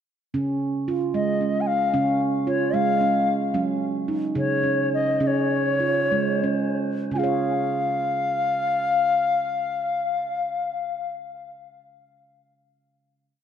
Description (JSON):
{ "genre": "world meditative, meditative tuned percussion", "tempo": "56-75 BPM (dotted quarters)", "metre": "6/8", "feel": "straight", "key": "Db major pentatonic", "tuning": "A4 = 439 Hz", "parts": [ { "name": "handpan", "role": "arpeggios", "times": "0.3-11.2 s", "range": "Db3 to Db5", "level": "-24 LUFS", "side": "right 4 dB", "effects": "none" }, { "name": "bright reedy bass bansuri", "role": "melody", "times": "1.1-11.1 s", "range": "Db5 to Ab5", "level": "-23 LUFS", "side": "left 3 dB", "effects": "ping-pong delay" } ], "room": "wet echo chamber reverb, RT60 2.0 s", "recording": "none", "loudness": "-21 LUFS", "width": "side -8 dB against mid", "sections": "0.3-7.1 A section; 7.1-11.4 final chord", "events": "slowing down 3.5-7.1", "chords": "0.3 Db; 3.5 Gb5; 5.2 Db" }